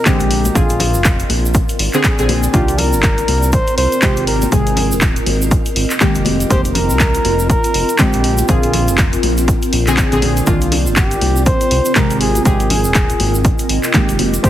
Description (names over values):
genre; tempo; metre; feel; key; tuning
deep house; 121 BPM; 4/4; swing 59% on 16ths; unclear; A4 = 438 Hz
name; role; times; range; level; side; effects
trumpet with bucket mute; melody; 0.0-14.5 s; F4 to C5; -20 LUFS; equal; dub echo
deep mellow chord stab; stabs; 0.0-14.5 s; C3 to Ab4; -19 LUFS; equal; chorus, vintage 12-bit sampler grit, sidechain pumping, dub echo
granular cloud pad; texture; 0.0-14.5 s; C4 to Eb5; -21 LUFS; equal; built-in reverb, sidechain pumping
electronic kick drum; drums; 0.1-14.5 s; none; -16 LUFS; equal; none
punchy analog drum machine; drums; 0.1-14.5 s; handclaps, hi-hat; -20 LUFS; equal; none
egg shaker; percussion; 0.1-14.5 s; none; -27 LUFS; right 2 dB; none
round analog bass; bass; 0.2-14.5 s; Eb1 to C2; -18 LUFS; equal; sidechain pumping
congas; percussion; 0.5-14.3 s; none; -25 LUFS; left 4 dB; none
room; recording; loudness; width
light reverb, digital ambience; heavily compressed radio sound; -12 LUFS; side -12 dB against mid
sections
0.0-14.5 A section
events
none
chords
0.3 Bb9; 2.5 Cm11; 4.3 Abmaj7; 6.3 Fm11; 8.2 Bb9; 10.5 Cm11; 12.2 Abmaj7